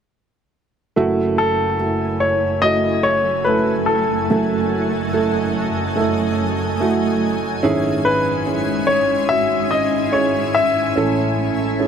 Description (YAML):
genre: pop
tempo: 72 BPM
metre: 4/4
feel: straight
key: unclear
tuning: A4 = 440 Hz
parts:
  - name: dark upright piano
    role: accompaniment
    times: 1.0-11.9 s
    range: F#1 to A4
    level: -20 LUFS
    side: right 3 dB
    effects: none
  - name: shimmering ambient pad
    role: sustained chords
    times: 1.8-11.9 s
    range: F#2 to G#5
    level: -23 LUFS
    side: left 1 dB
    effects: chorus, built-in reverb
  - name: clear baby grand piano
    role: melody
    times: 1.4-11.9 s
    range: A4 to E5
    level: -19 LUFS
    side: left 2 dB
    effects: none
room: light reverb, small room ambience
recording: none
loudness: -16 LUFS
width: side -7 dB against mid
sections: 1.0-11.9 A section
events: none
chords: 1.0 F#m7; 7.6 C#m/G#; 11.0 A